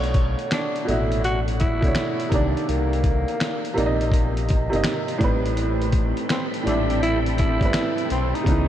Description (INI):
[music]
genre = lo-fi hip hop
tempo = 83 BPM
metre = 4/4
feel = swing 66% on 16ths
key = unclear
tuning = A4 = 440 Hz
[part]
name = clear upright piano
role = accompaniment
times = 0.0-8.7 s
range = A2 to Eb5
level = -25 LUFS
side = right 2 dB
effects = low-pass filter
[part]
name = sub bass with octave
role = bass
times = 0.0-8.7 s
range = G1 to C#2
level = -25 LUFS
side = left 1 dB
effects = none
[part]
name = dusty soul sampler-style drum kit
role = drums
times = 0.0-8.7 s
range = finger snaps, hi-hat, kick drum, snare drum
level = -24 LUFS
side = left 1 dB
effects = none
[part]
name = growling tenor saxophone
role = melody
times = 0.5-8.7 s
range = Bb3 to F#4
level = -27 LUFS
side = equal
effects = low-pass filter
[part]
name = string machine, full ensemble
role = sustained chords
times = 5.6-8.7 s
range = E3 to B5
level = -30 LUFS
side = equal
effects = ensemble chorus, low-pass filter
[sound]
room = moderate huge ambient reverb, RT60 8.2 s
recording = dreamy mix soaked in reverb, cassette tape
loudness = -20 LUFS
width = side -11 dB against mid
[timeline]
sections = 0.0-8.7 A section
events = none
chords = 0.0 Bm9; 2.3 Cm9; 5.2 Am9